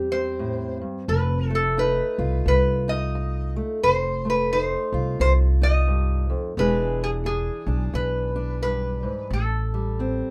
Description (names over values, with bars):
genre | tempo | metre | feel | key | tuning
acoustic country blues, solo or duo | 88 BPM | 4/4 | swing 60% on 8ths | unclear | A4 = 440 Hz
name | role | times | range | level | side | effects
fingerpicked steel-string acoustic guitar | accompaniment | 0.0-10.3 s | E2 to G#4 | -31 LUFS | equal | none
upright bass | bass | 0.0-10.2 s | E1 to E2 | -26 LUFS | equal | none
metal-body resonator slide guitar | melody | 0.1-10.3 s | G#4 to Eb5 | -27 LUFS | equal | none
room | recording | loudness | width
light reverb | none | -23 LUFS | mono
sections
0.0-10.3 A section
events
none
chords
0.0 Am7; 1.1 F7; 6.6 E7#9; 9.3 Am7